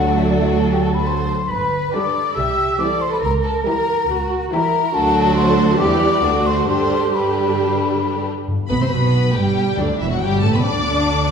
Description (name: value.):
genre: quick classical-period movement for symphony orchestra.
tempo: 138 BPM.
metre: 4/4.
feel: rubato.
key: G major.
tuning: A4 = 440 Hz.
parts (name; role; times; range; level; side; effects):
warm studio violin section; melody; 0.0-11.3 s; D4 to D6; -26 LUFS; left 2 dB; none.
mellow hollow concert flute; second line; 0.0-8.3 s; D5 to E6; -21 LUFS; left 3 dB; none.
rich chamber violin section; second line; 0.0-11.3 s; B3 to D5; -25 LUFS; left 3 dB; none.
warm chamber viola section; accompaniment; 0.0-11.3 s; D3 to D4; -21 LUFS; right 2 dB; none.
warm chamber cello section; bass; 0.0-11.3 s; D2 to B4; -23 LUFS; right 2 dB; none.
warm chamber double bass section; bass; 0.0-11.3 s; E1 to G2; -23 LUFS; right 1 dB; none.
timpani; percussion; 8.5-9.1 s; G2; -25 LUFS; left 3 dB; none.
room: wet recital hall reverb, RT60 1.4 s.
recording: heard from further back in the room.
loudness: -15 LUFS.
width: side -6 dB against mid.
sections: 0.0-8.5 A section; 8.5-11.3 B section.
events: none.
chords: 0.0 D; 1.5 G; 2.4 C; 3.2 C#dim7; 4.9 D; 5.8 Em; 6.2 D7; 6.7 G; 10.2 D5.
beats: 0.18 0.61 1.06 | 1.50 1.93 2.36 2.79 | 3.23 3.66 4.09 4.52 | 4.95 5.37 5.80 6.24 | 6.68 7.13 7.58 8.03 | 8.48 8.92 9.35 9.79 | 10.22 10.65 11.08.